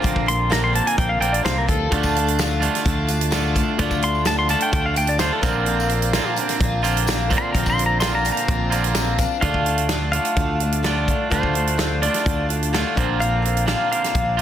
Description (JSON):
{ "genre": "folk rock and heartland rock", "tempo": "128 BPM", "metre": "4/4", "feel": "straight", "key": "D minor", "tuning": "A4 = 440 Hz", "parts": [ { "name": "picked twelve-string acoustic guitar", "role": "accompaniment", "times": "0.0-14.4 s", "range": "Bb2 to F4", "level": "-27 LUFS", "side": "left 5 dB", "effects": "none" }, { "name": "reed electric piano", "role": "accompaniment", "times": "0.0-14.4 s", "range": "D4 to Bb5", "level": "-34 LUFS", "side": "left 7 dB", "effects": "none" }, { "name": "twangy electric guitar", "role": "riff", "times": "0.0-14.4 s", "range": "Bb2 to F4", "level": "-24 LUFS", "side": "right 7 dB", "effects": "none" }, { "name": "fingered electric bass", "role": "bass", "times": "0.0-14.4 s", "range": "Bb1 to D2", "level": "-24 LUFS", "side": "equal", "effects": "none" }, { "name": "natural country drum kit", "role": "drums", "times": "0.0-14.4 s", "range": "hi-hat, kick drum, snare drum", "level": "-24 LUFS", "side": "equal", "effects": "soft clipping on snare" }, { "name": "pedal steel guitar", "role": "melody", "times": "0.3-14.4 s", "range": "A4 to C6", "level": "-24 LUFS", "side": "left 1 dB", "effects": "none" }, { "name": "tonewheel organ", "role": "sustained chords", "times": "1.6-9.4 s", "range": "G3 to C5", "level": "-34 LUFS", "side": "left 1 dB", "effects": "slow rotary speaker" }, { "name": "tambourine", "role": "percussion", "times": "1.9-9.4 s", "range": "none", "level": "-36 LUFS", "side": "left 7 dB", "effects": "none" } ], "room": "light reverb, small room ambience", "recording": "dense, heavily limited modern master", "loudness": "-18 LUFS", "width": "side -10 dB against mid", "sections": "0.0-9.4 A section; 9.4-14.4 B section", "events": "pedal steel guitar solo 0.0-9.4; reed electric piano fill 8.7-9.4", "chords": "0.0 Bbadd9; 1.9 Dm; 5.4 Bbadd9; 9.4 Dm; 13.0 Bbadd9" }